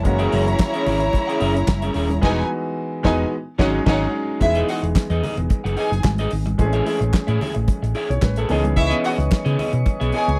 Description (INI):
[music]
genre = disco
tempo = 110 BPM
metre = 4/4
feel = straight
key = unclear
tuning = A4 = 444 Hz
[part]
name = warm studio violin section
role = second line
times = 0.0-10.4 s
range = D#4 to A#5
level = -25 LUFS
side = equal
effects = none
[part]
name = clear grand piano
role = accompaniment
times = 0.0-10.4 s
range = E3 to C#5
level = -28 LUFS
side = equal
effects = none
[part]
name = electric guitar at the edge of break-up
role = accompaniment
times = 0.0-10.3 s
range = B3 to F#5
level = -28 LUFS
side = equal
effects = none
[part]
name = fingered electric bass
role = bass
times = 0.0-10.4 s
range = D#1 to C#3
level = -24 LUFS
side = equal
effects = none
[part]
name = damped 70s drum kit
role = drums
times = 0.0-10.4 s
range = crash cymbal, handclaps, hi-hat, kick drum, snare drum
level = -22 LUFS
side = equal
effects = none
[part]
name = congas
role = percussion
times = 0.1-10.0 s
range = none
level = -33 LUFS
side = equal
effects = none
[part]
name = mellow tonewheel organ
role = sustained chords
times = 8.8-10.4 s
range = B4 to C#6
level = -30 LUFS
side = equal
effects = slow rotary speaker
[sound]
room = light reverb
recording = dry, close 1970s-style studio recording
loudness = -20 LUFS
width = mono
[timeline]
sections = 0.0-4.4 A section; 4.4-10.4 B section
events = band accent 2.2-4.4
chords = 0.1 F#9; 2.2 Emaj9; 3.3 G#7sus4; 4.4 Emaj7; 6.6 Amaj7; 8.5 C#m9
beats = | 0.05 0.60 1.14 1.69 | 2.23 2.78 3.32 3.87 | 4.41 4.96 5.50 6.05 | 6.59 7.14 7.68 8.23 | 8.77 9.32 9.86